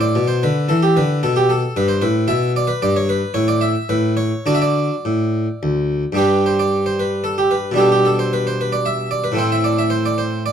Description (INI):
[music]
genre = classical, baroque-style suite movement for harpsichord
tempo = 112 BPM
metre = 3/4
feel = rubato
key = D major, G major from 6.2 s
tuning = A4 = 440 Hz
[part]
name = harpsichord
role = solo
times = 0.0-10.5 s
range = D2 to E5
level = -15 LUFS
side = equal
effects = none
[sound]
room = moderate large studio reverb, RT60 0.8 s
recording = dark, warm production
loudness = -15 LUFS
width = side -8 dB against mid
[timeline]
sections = 0.0-6.2 A section; 6.2-10.5 A section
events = none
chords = 0.0 G; 2.8 N.C.; 4.5 D; 6.2 G5; 7.8 G/B; 9.4 Am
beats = 0.17 0.70 | 1.23 1.76 2.29 | 2.82 3.34 3.89 | 4.46 5.05 5.63 | 6.20 6.74 7.28 | 7.80 8.33 8.86 | 9.39 9.93 10.46